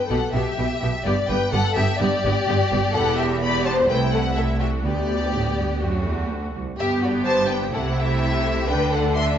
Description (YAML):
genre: quick classical-period movement for string orchestra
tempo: 126 BPM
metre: 4/4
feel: straight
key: G major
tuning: A4 = 440 Hz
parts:
  - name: warm symphonic violin section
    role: melody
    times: 0.0-9.2 s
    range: D5 to C6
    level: -27 LUFS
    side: left 4 dB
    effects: none
  - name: warm symphonic violin section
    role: second line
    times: 0.0-9.4 s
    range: F#4 to E5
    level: -25 LUFS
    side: left 3 dB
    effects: none
  - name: clear symphonic viola section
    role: accompaniment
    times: 0.1-9.4 s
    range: A3 to G4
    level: -27 LUFS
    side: equal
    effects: none
  - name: rich symphonic cello section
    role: bass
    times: 0.1-9.4 s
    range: C2 to D3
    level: -27 LUFS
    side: right 2 dB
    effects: none
  - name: warm symphonic double bass section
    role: bass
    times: 0.1-9.4 s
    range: E1 to D2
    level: -26 LUFS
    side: right 2 dB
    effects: none
room: moderate scoring stage reverb, RT60 1.5 s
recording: nothing above 7.6 kHz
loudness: -19 LUFS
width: side -9 dB against mid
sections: 0.0-9.4 A section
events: none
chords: 0.1 G/B; 1.1 G; 2.9 Em; 3.9 Am/C; 4.8 G/D; 5.8 D; 6.8 G; 7.7 Am/C; 8.7 D5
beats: 0.10 0.58 | 1.06 1.53 2.01 2.48 | 2.94 3.42 3.89 4.36 | 4.84 5.33 5.81 6.30 | 6.79 7.27 7.74 8.21 | 8.68 9.15